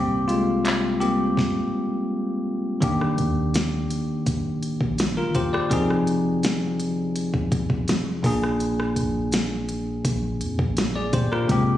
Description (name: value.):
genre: contemporary R&B.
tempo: 83 BPM.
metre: 4/4.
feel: straight.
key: Eb major.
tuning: A4 = 440 Hz.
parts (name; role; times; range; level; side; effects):
bell-like tine electric piano; accompaniment; 0.0-11.8 s; Bb2 to D5; -23 LUFS; left 1 dB; none.
warm 808-style bass; bass; 0.0-11.8 s; D1 to Bb2; -31 LUFS; equal; none.
smooth R&B drum kit; drums; 0.3-11.7 s; handclaps, hi-hat, kick drum, rim click, snare drum; -26 LUFS; equal; none.
room: digital ambience.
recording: recorded on a phone in the room, studio reverb.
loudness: -21 LUFS.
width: side -12 dB against mid.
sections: 0.0-2.8 A section; 2.8-11.8 B section.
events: tine electric piano solo 0.0-2.8; stop 1.4-2.8.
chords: 0.0 Abmaj7/C; 2.8 Ebmaj7; 5.7 Fm7; 8.2 Bb7.